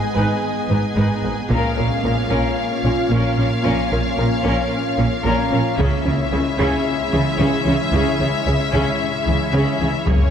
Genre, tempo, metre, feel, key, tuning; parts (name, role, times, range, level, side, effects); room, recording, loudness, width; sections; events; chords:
cinematic, hybrid orchestral and electronic film score; 112 BPM; 4/4; straight; A4 = 440 Hz
clear symphonic violin section; melody; 0.0-10.3 s; C#5 to G#5; -25 LUFS; left 4 dB
soft additive organ-like pad; sustained chords; 0.0-10.3 s; G#3 to D#5; -23 LUFS; left 1 dB; ensemble chorus, built-in reverb
soft round pluck; arpeggios; 0.0-10.2 s; C#3 to A#4; -28 LUFS; left 2 dB
clear studio viola section; accompaniment; 0.2-10.3 s; A#3 to B4; -25 LUFS; equal
rich symphonic cello section; bass; 0.2-10.2 s; F#2 to C#3; -24 LUFS; right 1 dB
rich symphonic double bass section; bass; 0.2-10.2 s; F#1 to C#2; -23 LUFS; right 2 dB
taiko ensemble; drums; 1.5-2.5, 5.8-6.8, 10.1-10.3 s; -23 LUFS; left 1 dB
wet concert hall reverb, RT60 2.3 s; -16 LUFS; side -8 dB against mid
0.0-10.3 A section
0.0 G#m; 1.5 A#m; 5.8 C#m